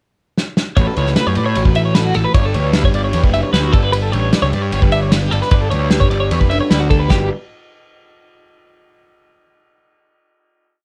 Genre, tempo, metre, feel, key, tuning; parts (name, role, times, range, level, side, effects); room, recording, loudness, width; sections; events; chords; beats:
math rock and midwest emo; 152 BPM; 4/4; straight; G lydian; A4 = 441 Hz
loose indie drum kit; drums; 0.4-7.2 s; kick drum, ride cymbal, snare drum, splash cymbal; -19 LUFS; equal
electric guitar through a small old amp; accompaniment; 0.8-7.3 s; G2 to D5; -24 LUFS; equal; subtle chorus
twelve-string electric guitar; arpeggios; 0.8-7.3 s; F#4 to E5; -23 LUFS; equal; tremolo
fuzz picked electric bass; bass; 0.8-7.3 s; F#1 to A2; -20 LUFS; equal; overdrive
light reverb; dark, warm production; -15 LUFS; mono
0.0-0.8 pickup bar; 0.8-7.1 A section; 7.1-8.7 final chord
drum fill 0.4-0.8
0.0 N.C.; 0.8 A69; 2.3 Gmaj7; 3.7 Em7/G (rootless); 5.5 Gmaj7; 7.1 N.C.
0.37 | 0.77 1.16 1.56 1.95 | 2.35 2.75 3.14 3.54 | 3.93 4.33 4.73 5.12 | 5.52 5.92 6.31 6.71 | 7.10